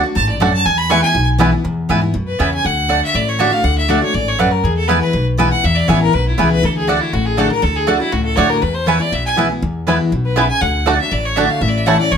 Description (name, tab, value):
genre	bluegrass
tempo	241 BPM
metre	4/4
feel	straight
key	E mixolydian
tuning	A4 = 441 Hz
part	picked steel-string acoustic guitar	accompaniment	0.0-12.2 s	E2 to F#4	-19 LUFS	left 3 dB	none
part	bright fiddle	melody	0.2-12.2 s	E4 to C#6	-18 LUFS	left 1 dB	plate reverb
part	upright bass	bass	0.2-12.2 s	E1 to G#2	-20 LUFS	equal	none
part	bluegrass banjo	melody	0.4-1.5, 9.9-11.9 s	A3 to F#4	-21 LUFS	right 4 dB	plate reverb
part	mandolin	stabs	0.4-12.0 s	A3 to A5	-17 LUFS	right 5 dB	none
room	moderate studio reverb, RT60 0.5 s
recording	none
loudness	-13 LUFS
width	side -7 dB against mid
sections	0.0-1.6 A section; 1.6-12.2 B section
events	fiddle solo 0.0-1.6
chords	0.0 D; 0.7 E; 2.6 D; 4.6 E; 6.6 D; 8.6 E; 10.6 D; 11.6 A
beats	0.16 0.41 | 0.66 0.91 1.15 1.40 | 1.65 1.90 2.15 2.40 | 2.65 2.89 3.14 3.39 | 3.64 3.89 4.14 4.39 | 4.64 4.89 5.14 5.39 | 5.64 5.89 6.13 6.38 | 6.63 6.88 7.13 7.38 | 7.63 7.88 8.13 8.38 | 8.63 8.88 9.13 9.38 | 9.62 9.87 10.12 10.37 | 10.62 10.87 11.12 11.37 | 11.62 11.87 12.12